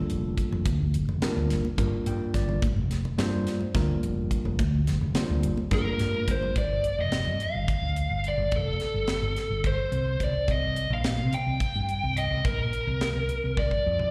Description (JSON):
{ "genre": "electric jazz fusion", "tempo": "214 BPM (eighths)", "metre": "7/8", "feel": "straight", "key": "G minor", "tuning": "A4 = 439 Hz", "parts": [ { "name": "overdriven tine electric piano", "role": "accompaniment", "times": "0.0-6.6 s", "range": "G3 to G5", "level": "-33 LUFS", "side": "equal", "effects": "lush chorus, slapback echo" }, { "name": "woody fretless electric bass", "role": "bass", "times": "0.1-14.1 s", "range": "F1 to C3", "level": "-30 LUFS", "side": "equal", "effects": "none" }, { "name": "crisp fusion drum kit", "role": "drums", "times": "0.1-14.1 s", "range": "hi-hat, kick drum, snare drum, toms", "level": "-33 LUFS", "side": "equal", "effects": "none" }, { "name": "congas", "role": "percussion", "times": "0.2-6.6 s", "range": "none", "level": "-37 LUFS", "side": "equal", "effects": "slapback echo" }, { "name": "lead guitar through a small cranked amp", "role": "melody", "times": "5.7-14.1 s", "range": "A4 to G5", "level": "-31 LUFS", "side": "equal", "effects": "overdrive, slapback echo" } ], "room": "light reverb", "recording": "live gig heard through the venue's PA, recital hall reverb", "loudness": "-27 LUFS", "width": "mono", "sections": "0.0-6.6 A section; 6.6-14.1 B section", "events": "tine electric piano fill 1.8-2.6; drum fill 5.9-6.6, 13.6-14.1", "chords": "0.0 Gm7; 6.6 Gsus2; 10.5 C5", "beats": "0.10 0.38 | 0.66 0.94 1.23 1.51 1.79 2.07 2.35 | 2.63 2.91 3.19 3.47 3.75 4.04 4.32 | 4.60 4.88 5.16 5.44 5.72 6.00 6.28 | 6.56 6.84 7.12 7.40 7.68 7.96 8.24 | 8.53 8.81 9.09 9.37 9.65 9.93 10.21 | 10.49 10.77 11.05 11.33 11.62 11.90 12.18 | 12.46 12.74 13.02 13.30 13.58 13.86" }